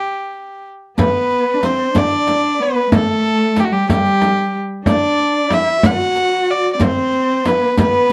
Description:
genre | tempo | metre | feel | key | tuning
Persian modal ensemble | 62 BPM (dotted quarters) | 6/8 | straight | G dastgah mahur | A4 = 440 Hz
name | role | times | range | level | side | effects
warm violin | melody | 0.0-8.1 s | F#4 to F#5 | -19 LUFS | equal | none
rich cello | second line | 1.0-8.1 s | G3 to F#4 | -21 LUFS | equal | none
frame drum | percussion | 1.0-7.9 s | none | -20 LUFS | equal | none
riq | percussion | 1.0-8.1 s | none | -25 LUFS | equal | none
room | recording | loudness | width
moderate small room reverb, RT60 0.5 s | dark, warm production | -16 LUFS | mono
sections
1.0-8.1 A section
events
stop 0.0-1.0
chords
none

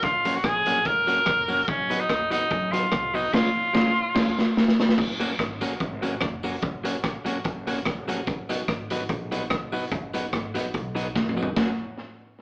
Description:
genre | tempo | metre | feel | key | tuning
ska | 146 BPM | 4/4 | swing 54% on 8ths | F# major | A4 = 442 Hz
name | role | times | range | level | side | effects
bright tenor saxophone | melody | 0.0-4.6 s | C#4 to A#4 | -26 LUFS | equal | none
upright bass | bass | 0.0-11.8 s | E#1 to F#2 | -39 LUFS | equal | none
raw garage drum kit | drums | 0.0-11.7 s | crash cymbal, hi-hat, kick drum, ride cymbal, rim click, snare drum, toms | -28 LUFS | equal | tape echo
tambourine | percussion | 0.2-11.8 s | none | -48 LUFS | equal | none
electric guitar at the edge of break-up | accompaniment | 0.3-11.7 s | E#3 to F#4 | -33 LUFS | equal | spring reverb
room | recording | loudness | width
light reverb | band playing live in one room, AM radio sound | -25 LUFS | mono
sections
0.0-5.0 A section; 5.0-11.6 B section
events
band accent 3.3-5.0; drum fill 4.2-5.0, 11.2-11.6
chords
0.0 F#; 1.7 B/F#; 3.3 C#; 5.0 F#; 8.3 B; 11.6 F#

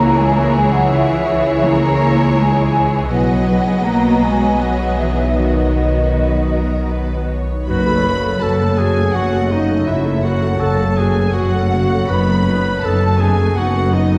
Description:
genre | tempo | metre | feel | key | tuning
cinematic | 81 BPM | 3/4 | rubato | unclear | A4 = 440 Hz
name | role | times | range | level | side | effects
warm studio violin section | melody | 0.0-14.2 s | E4 to B5 | -31 LUFS | equal | none
large flute ensemble | second line | 0.0-7.3 s | D#5 to A#5 | -23 LUFS | equal | none
rich studio violin section | second line | 0.0-14.2 s | G#4 to B5 | -26 LUFS | equal | none
rich studio viola section | accompaniment | 0.0-14.2 s | E3 to A4 | -25 LUFS | equal | none
concert harp | arpeggios | 0.0-14.2 s | F#2 to D#5 | -25 LUFS | equal | none
rich studio cello section | bass | 0.0-14.2 s | F#2 to A#3 | -22 LUFS | equal | none
rich studio double bass section | bass | 0.0-14.2 s | F#1 to C#2 | -22 LUFS | equal | none
warm clarinet | second line | 7.7-14.2 s | D#4 to B4 | -22 LUFS | equal | none
room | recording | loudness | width
wet scoring stage reverb, RT60 1.7 s | heard from further back in the room | -16 LUFS | mono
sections
0.0-7.7 A section; 7.7-14.2 B section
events
none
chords
0.0 C#m; 3.1 B; 7.7 F#m; 12.1 B7/F#

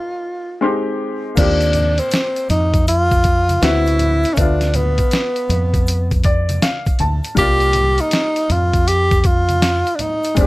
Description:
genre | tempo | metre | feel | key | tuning
hip hop, jazz-hop | 80 BPM | 4/4 | swing 64% on 16ths | unclear | A4 = 442 Hz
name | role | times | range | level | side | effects
breathy tenor saxophone | melody | 0.0-10.5 s | B3 to G4 | -18 LUFS | equal | none
warm upright piano | accompaniment | 0.0-10.5 s | G3 to C6 | -23 LUFS | left 2 dB | none
deep dub fingered electric bass | bass | 1.4-10.5 s | F1 to F2 | -18 LUFS | equal | none
lo-fi sampler-style drum kit | drums | 1.4-10.5 s | crash cymbal, hi-hat, kick drum, snare drum | -18 LUFS | equal | none
tube shaker and congas | percussion | 1.4-10.5 s | none | -30 LUFS | right 1 dB | none
room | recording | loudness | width
little or no reverb | none | -14 LUFS | side -19 dB against mid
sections
0.0-1.4 A section; 1.4-10.5 B section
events
break 0.0-1.4; upright piano fill 0.2-1.4, 5.9-7.4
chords
0.0 Cm11 (rootless); 0.6 Abmaj7; 1.4 Eb69; 3.6 D13; 4.4 Dm6; 7.4 C7sus4

